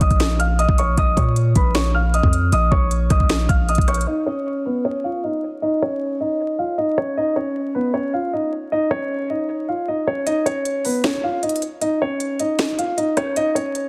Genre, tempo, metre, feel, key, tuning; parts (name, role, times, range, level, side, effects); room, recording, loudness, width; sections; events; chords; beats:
hip hop, trap; 155 BPM; 4/4; half-time; A4 = 440 Hz
dark concert grand piano; melody; 0.0-13.9 s; B3 to F6; -23 LUFS; equal; low-pass filter
long sustained 808-style bass; bass; 0.0-4.1 s; Bb1 to Bb2; -21 LUFS; equal
trap drum kit; drums; 0.0-4.1, 10.3-13.8 s; finger snaps, hi-hat, kick drum, rim click, snare drum; -23 LUFS; equal; soft clipping on snare
light reverb; dense, heavily limited modern master, vinyl crackle; -20 LUFS; mono
0.0-4.1 A section; 4.1-10.3 B section; 10.3-13.9 C section
filter sweep on grand piano 4.1-10.3; kick muted 10.3-13.9
0.0 Bbm; 4.1 Badd9 (rootless)
0.20 0.59 | 0.98 1.36 1.75 2.14 | 2.52 2.91 3.30 3.69 | 4.07 4.46 4.85 5.23 | 5.62 6.01 6.39 6.78 | 7.17 7.56 7.94 8.33 | 8.72 9.11 9.49 9.88 | 10.27 10.65 11.04 11.43 | 11.81 12.20 12.59 12.98 | 13.36 13.75